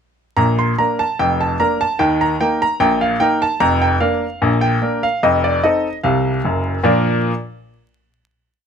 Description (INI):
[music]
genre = ragtime piano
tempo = 74 BPM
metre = 2/4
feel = straight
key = Bb major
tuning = A4 = 440 Hz
[part]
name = bright baby grand piano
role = solo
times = 0.4-7.3 s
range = F1 to C6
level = -14 LUFS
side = equal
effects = none
[sound]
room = light reverb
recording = close, detailed microphones, vinyl crackle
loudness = -15 LUFS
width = side -7 dB against mid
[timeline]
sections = 0.4-6.9 A section; 6.9-8.5 final chord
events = none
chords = 0.4 Bb; 2.0 Eb5; 3.6 Bb/F; 5.2 F7; 6.9 Bb